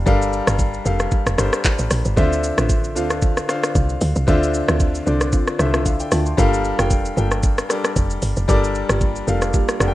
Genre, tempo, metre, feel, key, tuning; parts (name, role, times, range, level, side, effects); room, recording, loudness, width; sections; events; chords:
amapiano; 114 BPM; 4/4; swing 55% on 16ths; A4 = 440 Hz
clear grand piano; accompaniment; 0.0-9.9 s; D3 to C6; -22 LUFS; left 2 dB
woody log drum bass; bass; 0.0-9.9 s; F1 to D2; -21 LUFS; equal
smooth R&B drum kit; drums; 0.1-9.9 s; handclaps, hi-hat, kick drum, rim click, shaker; -19 LUFS; equal; vintage 12-bit sampler grit
deep mellow chord stab; stabs; 2.2-9.9 s; Bb3 to G4; -28 LUFS; right 2 dB; chorus, tape echo
digital ambience; rough home demo mix; -16 LUFS; side -16 dB against mid
0.0-9.9 A section
0.0 Gm7; 2.2 Dm7; 6.4 Gm7